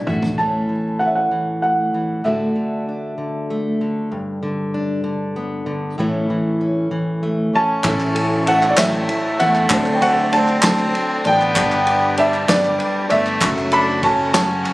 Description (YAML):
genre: indie folk with a building arrangement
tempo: 64 BPM (dotted quarters)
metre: 6/8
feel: straight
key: unclear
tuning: A4 = 440 Hz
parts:
  - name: warm upright piano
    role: melody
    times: 0.0-3.8, 7.6-14.7 s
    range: D5 to B5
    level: -19 LUFS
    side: right 1 dB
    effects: tape echo
  - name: picked steel-string acoustic guitar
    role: accompaniment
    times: 0.0-0.4, 7.9-14.7 s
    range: F#2 to A4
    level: -26 LUFS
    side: left 2 dB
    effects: none
  - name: open-back banjo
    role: arpeggios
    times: 0.0-0.4, 7.8-14.7 s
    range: D4 to C6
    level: -25 LUFS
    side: right 2 dB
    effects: none
  - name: fingered electric bass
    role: bass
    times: 0.1-0.4, 7.8-14.6 s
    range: F#1 to E2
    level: -24 LUFS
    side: equal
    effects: none
  - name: unplugged drum kit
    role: drums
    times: 0.1-0.4, 7.8-14.7 s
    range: kick drum, ride cymbal, snare drum, toms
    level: -24 LUFS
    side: equal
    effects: none
  - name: fingerpicked plugged-in steel-string acoustic guitar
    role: accompaniment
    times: 0.4-9.7 s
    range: G2 to F#4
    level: -21 LUFS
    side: equal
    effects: none
  - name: warm trumpet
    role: second line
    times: 7.5-14.7 s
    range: F#3 to D4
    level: -23 LUFS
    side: left 1 dB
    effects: none
  - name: dark grand piano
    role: accompaniment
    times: 7.8-14.7 s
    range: F#1 to G5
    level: -28 LUFS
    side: equal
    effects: none
  - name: group handclap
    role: percussion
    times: 7.8-14.7 s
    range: none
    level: -22 LUFS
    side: equal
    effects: none
  - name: mellow tonewheel organ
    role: sustained chords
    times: 7.9-14.7 s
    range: A4 to D6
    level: -32 LUFS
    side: equal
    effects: none
room: light reverb, small room ambience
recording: recorded on a phone in the room, club reverb, compression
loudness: -16 LUFS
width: side -19 dB against mid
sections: 0.4-7.8 A section; 7.8-14.7 B section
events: drum fill 0.0-0.4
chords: 0.4 A; 2.2 D/A; 4.1 G; 6.0 A; 9.7 D7; 11.6 G; 13.4 F#m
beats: | 0.38 1.31 | 2.25 3.18 | 4.12 5.05 | 5.98 6.92 | 7.85 8.78 | 9.71 10.63 | 11.56 12.49 | 13.42 14.35